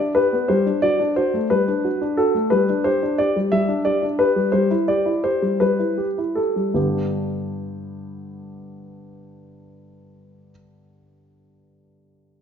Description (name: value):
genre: classical-period piano sonatina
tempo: 51-61 BPM (dotted quarters)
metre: 6/8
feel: rubato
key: G major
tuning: A4 = 440 Hz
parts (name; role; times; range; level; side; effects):
- warm concert grand piano; solo; 0.0-12.4 s; G2 to E5; -18 LUFS; left 1 dB; none
room: moderate recital hall reverb, RT60 1.7 s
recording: nothing above 7.5 kHz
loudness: -18 LUFS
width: side -8 dB against mid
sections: 0.0-6.8 A section; 6.8-11.3 B section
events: slowing down 1.5-6.8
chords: 0.0 G; 0.5 D/G; 2.5 G5; 4.5 G69; 6.8 G